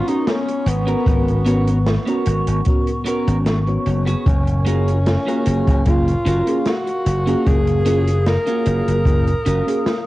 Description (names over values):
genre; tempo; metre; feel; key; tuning
vaporwave; 75 BPM; 4/4; straight; F# major; A4 = 440 Hz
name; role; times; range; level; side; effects
breathy tenor saxophone; melody; 0.0-10.1 s; B3 to A#4; -23 LUFS; equal; cassette tape, tape echo
warbly tape-like pad; sustained chords; 0.0-10.1 s; B3 to D#6; -29 LUFS; left 2 dB; chorus, built-in reverb, cassette tape
clean electric guitar; riff; 0.0-9.8 s; B3 to C#5; -26 LUFS; right 2 dB; wide subtle chorus, cassette tape, tape echo
mellow FM electric piano; accompaniment; 0.1-9.9 s; A#3 to E#5; -23 LUFS; equal; analog chorus, cassette tape, tape echo
open jazz drum kit; drums; 0.1-10.0 s; hi-hat, snare drum; -25 LUFS; equal; none
slap bass; bass; 0.7-9.6 s; F#1 to G#1; -18 LUFS; equal; none
kick drum; drums; 1.1-9.2 s; none; -19 LUFS; equal; none
room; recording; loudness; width
light reverb, small room ambience; home recording on cassette; -15 LUFS; side -17 dB against mid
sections
0.0-10.1 A section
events
none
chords
0.0 G#m11; 4.3 F#maj7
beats
0.27 | 1.07 1.87 2.67 3.47 | 4.27 5.07 5.87 6.67 | 7.47 8.27 9.07 9.87